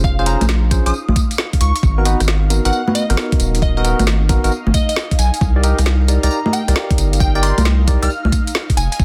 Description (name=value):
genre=UK garage, two-step garage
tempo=134 BPM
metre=4/4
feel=swing 67% on 16ths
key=unclear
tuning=A4 = 440 Hz
part: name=glassy wavetable pluck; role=melody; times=0.0-9.0 s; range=Eb5 to F6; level=-26 LUFS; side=equal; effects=chorus, digital delay
part: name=ethereal airy pad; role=sustained chords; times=0.0-9.0 s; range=Eb4 to F5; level=-34 LUFS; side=equal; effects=ensemble chorus, built-in reverb, sidechain pumping
part: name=tine electric piano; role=stabs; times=0.0-8.1 s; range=Cb4 to Eb5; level=-24 LUFS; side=equal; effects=digital delay
part: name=saturated sub bass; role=bass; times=0.0-9.0 s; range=Eb1 to Db2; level=-18 LUFS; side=equal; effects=none
part: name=electronic kick drum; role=drums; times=0.0-9.0 s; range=none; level=-19 LUFS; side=equal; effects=overdrive
part: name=garage drum kit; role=drums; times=0.0-9.0 s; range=congas, hi-hat, rim click, snare drum, tambourine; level=-23 LUFS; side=equal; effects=overdrive
room=little or no reverb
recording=dense, heavily limited modern master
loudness=-16 LUFS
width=mono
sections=0.0-9.0 A section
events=none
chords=0.0 Bbm9; 1.8 Abm9; 5.4 Cm9